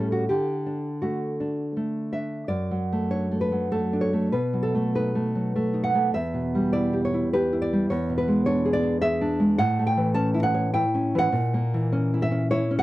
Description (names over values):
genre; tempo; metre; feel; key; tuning
romantic piece for solo classical guitar; 80-109 BPM; 3/4; rubato; D major; A4 = 441 Hz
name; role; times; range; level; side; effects
nylon-string guitar; solo; 0.0-12.8 s; E2 to A5; -22 LUFS; equal; none
room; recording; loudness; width
light reverb; dry, close 1970s-style studio recording; -22 LUFS; side -16 dB against mid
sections
0.0-2.5 A section; 2.5-12.8 B section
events
none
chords
0.3 D; 2.5 D/F#; 4.3 B7; 6.1 Em; 7.9 E7; 9.6 A; 11.3 F#7/A#